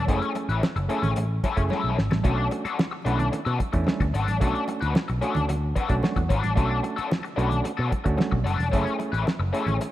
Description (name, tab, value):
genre	funk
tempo	111 BPM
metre	4/4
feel	straight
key	B dorian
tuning	A4 = 439 Hz
part	raw garage guitar	accompaniment	0.0-9.8 s	C#4 to B4	-28 LUFS	left 5 dB	wah, overdrive
part	picked electric bass with an envelope filter	bass	0.0-9.8 s	E1 to B2	-26 LUFS	equal	none
part	overdriven clav	stabs	0.1-9.9 s	A3 to B4	-30 LUFS	right 3 dB	auto-wah
part	cloth-damped thuddy drum kit	drums	0.1-9.9 s	hi-hat, kick drum, snare drum	-27 LUFS	equal	none
part	congas	percussion	0.1-9.9 s	none	-35 LUFS	right 4 dB	none
room	light reverb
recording	rough home demo mix, vinyl crackle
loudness	-22 LUFS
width	side -14 dB against mid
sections	0.0-9.9 A section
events	drum fill 1.7-2.3; clav fill 5.5-6.6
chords	0.1 F#m7; 2.3 Bm7; 8.7 F#m7